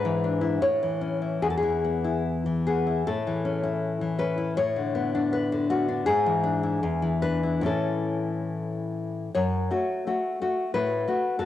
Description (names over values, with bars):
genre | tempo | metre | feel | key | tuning
romantic piece for solo classical guitar | 67-94 BPM | 2/4 | rubato | A major | A4 = 440 Hz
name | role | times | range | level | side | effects
nylon-string guitar | solo | 0.0-11.5 s | E2 to C#5 | -24 LUFS | left 2 dB | none
room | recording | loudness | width
moderate lush hall reverb, RT60 2.5 s | home recording on cassette | -24 LUFS | side -12 dB against mid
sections
0.0-9.3 A section; 9.3-11.5 B section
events
none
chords
0.0 E7/G#; 0.6 A; 1.4 E; 3.0 A; 4.6 Bm7/A; 6.0 E7/G#; 6.8 E7; 7.6 A; 9.3 F#m; 10.7 F#m/A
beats
0.60 | 1.40 2.23 | 3.05 3.81 | 4.56 5.31 | 6.05 6.79 | 7.64 8.51 | 9.34 10.05 | 10.74 11.38